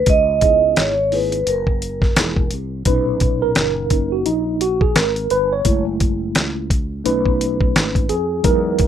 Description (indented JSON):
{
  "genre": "hip hop, jazz-hop",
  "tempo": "86 BPM",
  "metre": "4/4",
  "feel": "swing 59% on 16ths",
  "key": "B major",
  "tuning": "A4 = 444 Hz",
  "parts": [
    { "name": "vibraphone with soft mallets", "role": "melody", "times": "0.0-2.5 s", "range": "A#4 to D#5", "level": "-17 LUFS", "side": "right 3 dB", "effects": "none" },
    { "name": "sustaining fretless electric bass", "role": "bass", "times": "0.0-8.9 s", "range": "E1 to E#2", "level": "-26 LUFS", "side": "equal", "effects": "lush chorus" },
    { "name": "dusty soul sampler-style drum kit", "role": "drums", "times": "0.1-8.9 s", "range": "hi-hat, kick drum, snare drum", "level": "-18 LUFS", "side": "equal", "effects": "none" },
    { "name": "mellow tine electric piano", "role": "accompaniment", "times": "0.4-8.9 s", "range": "A#2 to C#5", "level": "-19 LUFS", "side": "right 1 dB", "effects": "medium stereo tremolo, plate reverb" }
  ],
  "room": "light reverb",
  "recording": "rough home demo mix",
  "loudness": "-15 LUFS",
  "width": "side -9 dB against mid",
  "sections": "0.0-2.9 A section; 2.9-8.9 B section",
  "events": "tine electric piano solo 2.9-8.9",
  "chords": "0.1 C#m7; 1.5 F#13; 2.9 Bmaj7; 5.7 F#m7; 7.1 B7",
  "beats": "| 0.07 0.77 1.47 2.17 | 2.87 3.56 4.26 4.96 | 5.66 6.35 7.05 7.75 | 8.45"
}